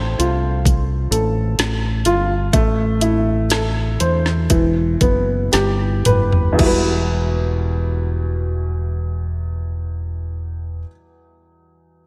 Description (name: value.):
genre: pop ballad.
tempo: 55-65 BPM.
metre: 4/4.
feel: straight.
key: E minor.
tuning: A4 = 440 Hz.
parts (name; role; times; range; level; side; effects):
warm upright piano; accompaniment; 0.0-12.1 s; E2 to G5; -23 LUFS; equal; slapback echo.
fingered electric bass; bass; 0.0-10.8 s; E1 to E2; -22 LUFS; equal; none.
smooth R&B drum kit; drums; 0.2-6.8 s; crash cymbal, hi-hat, kick drum, snare drum, toms; -22 LUFS; equal; none.
room: light reverb.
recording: none.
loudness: -19 LUFS.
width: mono.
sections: 0.0-6.6 A section; 6.6-10.9 B section.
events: slowing down 0.0-6.6; drum fill 5.5-6.6.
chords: 0.0 Fadd9/A; 2.5 Am; 4.5 Emadd9.